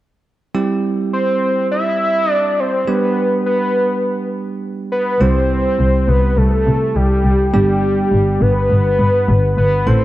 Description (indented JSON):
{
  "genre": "synth-pop",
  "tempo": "103 BPM",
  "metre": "4/4",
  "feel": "straight",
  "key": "C major",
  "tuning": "A4 = 441 Hz",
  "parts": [
    { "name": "bell-like tine electric piano", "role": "accompaniment", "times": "0.5-10.0 s", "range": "G3 to A4", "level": "-20 LUFS", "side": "right 4 dB", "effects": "none" },
    { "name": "fat analog lead", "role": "melody", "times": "1.1-10.0 s", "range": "G4 to E5", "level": "-16 LUFS", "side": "left 1 dB", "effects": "slapback echo" },
    { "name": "warm double bass", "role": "bass", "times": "5.2-10.0 s", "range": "G1 to C3", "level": "-15 LUFS", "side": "left 1 dB", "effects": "none" }
  ],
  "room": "moderate plate reverb, RT60 2.2 s",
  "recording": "dark, warm production",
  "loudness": "-13 LUFS",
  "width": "side -15 dB against mid",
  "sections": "0.5-5.2 A section; 5.2-10.0 B section",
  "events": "none",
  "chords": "0.5 C; 2.9 G; 5.2 C; 7.5 G",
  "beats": "| 0.55 1.13 1.71 2.29 | 2.88 3.46 4.04 4.62 | 5.21 5.79 6.37 6.95 | 7.54 8.12 8.70 9.28 | 9.87"
}